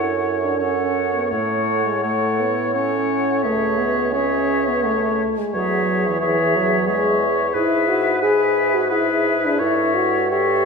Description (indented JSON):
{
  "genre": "classical, slow romantic movement for wind quintet",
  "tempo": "86 BPM",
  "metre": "3/4",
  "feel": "rubato",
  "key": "unclear",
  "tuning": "A4 = 440 Hz",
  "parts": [
    { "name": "bright concert flute", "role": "melody", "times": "0.0-10.7 s", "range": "E5 to F#5", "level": "-25 LUFS", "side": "left 5 dB", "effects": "none" },
    { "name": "clear oboe", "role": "second line", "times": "0.0-10.7 s", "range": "B4 to C#5", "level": "-24 LUFS", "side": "left 3 dB", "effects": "none" },
    { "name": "clear clarinet", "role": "accompaniment", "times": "0.0-10.7 s", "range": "G#4 to A4", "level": "-27 LUFS", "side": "right 4 dB", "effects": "none" },
    { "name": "mellow French horn", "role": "accompaniment", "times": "0.0-10.7 s", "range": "E3 to G#4", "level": "-22 LUFS", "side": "left 1 dB", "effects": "none" },
    { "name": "mellow bassoon", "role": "bass", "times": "0.0-10.7 s", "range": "C#2 to A2", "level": "-24 LUFS", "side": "right 4 dB", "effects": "none" }
  ],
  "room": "wet recital hall reverb, RT60 1.7 s",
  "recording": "recorded in a church or concert hall",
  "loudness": "-17 LUFS",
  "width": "side -5 dB against mid",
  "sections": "0.0-10.7 A section",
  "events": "none",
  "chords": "0.0 F#m; 1.3 F#m/A; 3.4 C#m; 5.5 C#m/E; 7.5 E/G#; 9.6 A7/G"
}